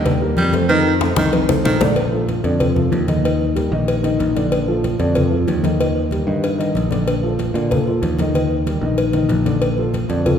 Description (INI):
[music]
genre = latin, salsa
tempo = 188 BPM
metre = 4/4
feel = straight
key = Bb major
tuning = A4 = 440 Hz
[part]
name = breathy baritone saxophone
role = second line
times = 0.0-1.8 s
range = D3 to G3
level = -21 LUFS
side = right 2 dB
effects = none
[part]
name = dark concert grand piano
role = accompaniment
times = 0.0-10.4 s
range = D3 to Eb5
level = -20 LUFS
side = left 1 dB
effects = none
[part]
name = picked electric bass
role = bass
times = 0.0-10.4 s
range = Bb1 to Bb2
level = -20 LUFS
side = equal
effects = none
[part]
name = congas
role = percussion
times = 0.1-10.4 s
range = none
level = -24 LUFS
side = left 2 dB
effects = none
[part]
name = cowbell and bongos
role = percussion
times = 0.1-10.4 s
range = none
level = -24 LUFS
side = left 1 dB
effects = none
[sound]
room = wet scoring stage reverb, RT60 1.7 s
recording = recorded in a church or concert hall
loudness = -15 LUFS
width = side -8 dB against mid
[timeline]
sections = 0.0-2.0 A section; 2.0-10.4 B section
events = drum fill 1.0-2.0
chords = 0.0 Ebmaj7; 0.7 F7; 2.0 Bbmaj7; 3.2 Ebmaj7; 4.5 Bbmaj7; 5.8 Ebmaj7; 7.1 Bbmaj7; 8.3 Ebmaj7; 9.6 Bbmaj7